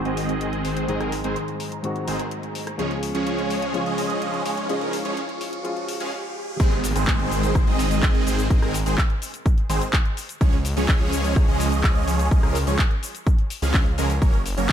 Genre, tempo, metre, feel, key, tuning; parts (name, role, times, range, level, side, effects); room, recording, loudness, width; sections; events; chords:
EDM, festival progressive house; 126 BPM; 4/4; straight; Db major; A4 = 440 Hz
dark grand piano; accompaniment; 0.0-6.6 s; Ab2 to Ab4; -30 LUFS; left 2 dB; sidechain pumping, dub echo
lush unison pad; sustained chords; 0.0-6.1 s; Ab4 to Db6; -34 LUFS; equal; chorus, sidechain pumping
supersaw chords; riff; 0.0-14.7 s; Eb3 to F5; -26 LUFS; right 2 dB; phaser, sidechain pumping, low-pass filter, dub echo
detuned saw bass; bass; 0.0-14.7 s; Gb1 to Db2; -27 LUFS; equal; sidechain pumping
riser and downlifter; sound effects; 1.2-10.4 s; -34 LUFS; equal
house drum kit; drums; 0.1-14.7 s; crash cymbal, handclaps, hi-hat, rim click, shaker; -30 LUFS; left 1 dB
electronic kick drum; drums; 6.6-14.7 s; -19 LUFS; equal
digital ambience; high-pass filter; -20 LUFS; side -10 dB against mid
0.0-6.6 A section; 6.6-14.7 B section
build-up 0.0-6.6; filter sweep on supersaw synth 0.0-6.6; filter sweep on analog synth pad 0.0-6.6; filter sweep 0.0-6.6; riser 1.2-6.6; stop 6.1-6.6; drop 6.6-14.7
0.0 Ab; 2.8 Db; 6.6 Ab; 10.4 Db; 14.2 Gb